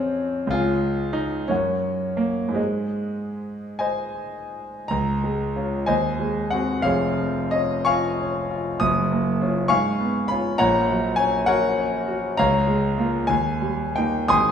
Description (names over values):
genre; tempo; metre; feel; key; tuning
classical, romantic character piece for solo piano; 47-68 BPM (dotted quarters); 6/8; rubato; Db major; A4 = 439 Hz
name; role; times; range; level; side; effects
clear concert grand piano; solo; 0.0-14.5 s; F1 to Eb6; -20 LUFS; equal; none
room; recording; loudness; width
wet recital hall reverb, RT60 1.5 s; studio ambience; -20 LUFS; side -8 dB against mid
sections
0.0-4.9 A section; 4.9-14.5 B section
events
none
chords
0.0 Db/F; 0.5 Db; 1.5 Gb; 2.6 Ab; 4.9 Db; 5.9 Ab7/Eb; 6.8 Db/F; 8.8 Gbmaj7; 9.7 Db7/Ab; 10.6 Gb/Bb; 12.4 Bbm7/Db; 13.3 Eb